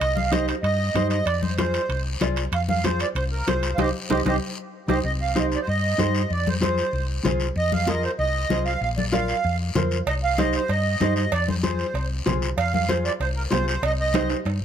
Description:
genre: latin, cumbia.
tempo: 191 BPM.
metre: 4/4.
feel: straight.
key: C minor.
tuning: A4 = 439 Hz.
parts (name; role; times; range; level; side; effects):
accordion; melody; 0.0-14.3 s; G4 to F5; -26 LUFS; right 4 dB; light tremolo tuning.
hollow-body short-scale fingered electric bass; bass; 0.0-14.6 s; G1 to G2; -26 LUFS; left 1 dB; none.
guiro; percussion; 0.0-14.6 s; none; -35 LUFS; left 5 dB; none.
timbales and cowbell; percussion; 0.0-5.0, 10.1-14.6 s; none; -31 LUFS; right 8 dB; none.
congas; percussion; 0.2-14.3 s; none; -29 LUFS; left 5 dB; none.
mellow electric guitar; accompaniment; 0.3-14.4 s; Eb4 to D5; -27 LUFS; right 1 dB; vibrato effect.
room: light reverb.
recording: none.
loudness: -21 LUFS.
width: side -9 dB against mid.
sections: 0.0-5.0 A section; 5.0-14.6 B section.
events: band accent 3.8-5.0; drum fill 4.4-5.0, 14.1-14.6.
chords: 0.0 Cm; 1.3 Fm; 3.8 Cm; 6.3 Fm; 8.8 Bb; 10.1 Cm; 11.3 Fm; 13.8 Cm.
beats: | 0.01 0.33 0.64 0.96 | 1.27 1.58 1.90 2.21 | 2.53 2.84 3.16 3.47 | 3.79 4.10 4.42 4.73 | 5.05 5.36 5.67 5.99 | 6.30 6.62 6.93 7.25 | 7.56 7.88 8.19 8.50 | 8.82 9.13 9.44 9.76 | 10.07 10.38 10.70 11.01 | 11.32 11.64 11.95 12.27 | 12.58 12.89 13.21 13.52 | 13.83 14.15 14.46.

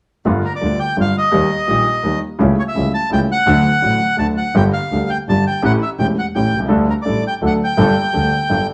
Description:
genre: tango.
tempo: 168 BPM.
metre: 3/4.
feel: rubato.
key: G minor.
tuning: A4 = 441 Hz.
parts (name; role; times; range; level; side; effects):
warm concert grand piano; accompaniment; 0.3-8.7 s; E1 to A4; -19 LUFS; equal; none.
clear double bass; bass; 0.3-8.7 s; E1 to Eb2; -25 LUFS; equal; none.
bandoneon; melody; 0.4-8.7 s; Bb4 to A5; -21 LUFS; equal; none.
room: wet studio reverb, RT60 0.7 s.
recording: none.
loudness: -16 LUFS.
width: mono.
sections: 0.3-8.7 A section.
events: none.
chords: 0.3 Gm7; 1.3 Eb; 2.4 A7/C#; 3.5 D; 4.6 Gm; 5.6 A7; 6.7 Dsus4; 7.4 D; 7.8 Gmadd9.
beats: | 0.26 0.62 0.98 | 1.33 1.69 2.05 | 2.40 2.75 3.11 | 3.47 3.83 4.19 | 4.55 4.91 5.27 | 5.63 5.99 6.34 | 6.70 7.06 7.41 | 7.77 8.13 8.50.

